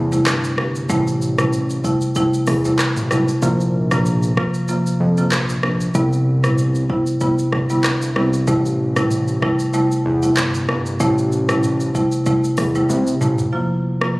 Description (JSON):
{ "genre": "afrobeats", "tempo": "95 BPM", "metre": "4/4", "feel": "swing 55% on 16ths", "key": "unclear", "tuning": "A4 = 440 Hz", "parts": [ { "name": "fat analog bass", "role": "bass", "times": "0.0-13.5 s", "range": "G1 to F2", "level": "-21 LUFS", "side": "equal", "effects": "none" }, { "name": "marimba with medium mallets", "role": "accompaniment", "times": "0.1-14.2 s", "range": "C3 to F4", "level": "-18 LUFS", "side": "equal", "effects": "none" }, { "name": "afro-pop drum kit", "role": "drums", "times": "0.1-14.1 s", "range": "handclaps, hi-hat, kick drum, rim click, shaker, toms", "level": "-22 LUFS", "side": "equal", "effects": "overdrive" } ], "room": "light reverb, digital ambience", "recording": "recorded on a phone in the room, club reverb, compression", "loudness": "-16 LUFS", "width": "side -22 dB against mid", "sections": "0.0-13.5 A section", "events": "drum fill 12.9-13.5", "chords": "0.0 Am7; 3.4 Bbsus2; 5.9 Cmaj7; 8.5 Am7; 13.5 Bbsus2" }